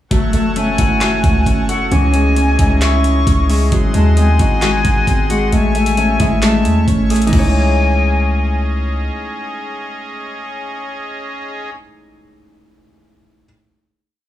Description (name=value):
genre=hip hop, trap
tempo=133 BPM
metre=4/4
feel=half-time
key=C# harmonic minor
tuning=A4 = 440 Hz
part: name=dark baby grand piano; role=accompaniment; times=0.1-13.5 s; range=E3 to F#4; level=-21 LUFS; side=left 2 dB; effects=none
part: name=pipe organ, strings celeste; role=sustained chords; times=0.1-11.7 s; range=C#4 to C#6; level=-27 LUFS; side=right 1 dB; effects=none
part: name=concert harp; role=arpeggios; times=0.1-11.8 s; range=G#3 to C#5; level=-19 LUFS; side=equal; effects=analog delay
part: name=warm 808-style bass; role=bass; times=0.1-9.1 s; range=F#1 to E2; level=-16 LUFS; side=equal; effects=none
part: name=trap drum kit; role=drums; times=0.1-7.4 s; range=crash cymbal, handclaps, hi-hat, kick drum, snare drum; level=-18 LUFS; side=equal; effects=none
part: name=silver concert flute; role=second line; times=0.3-8.6 s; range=F#5 to C#6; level=-21 LUFS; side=left 4 dB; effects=analog delay
room=small room reverb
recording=dry, gritty hardware recording, studio reverb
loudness=-12 LUFS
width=side -12 dB against mid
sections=0.1-7.3 hook; 7.3-10.9 final chord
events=none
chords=0.1 F#m7; 1.9 C#madd9; 3.7 G#7; 5.5 Amaj7; 7.3 C#madd9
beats=| 0.11 0.56 1.01 1.47 | 1.92 2.37 2.82 3.27 | 3.72 4.17 4.62 5.07 | 5.53 5.98 6.43 6.88 | 7.33 7.78 8.23 8.68 | 9.13 9.59 10.04 10.49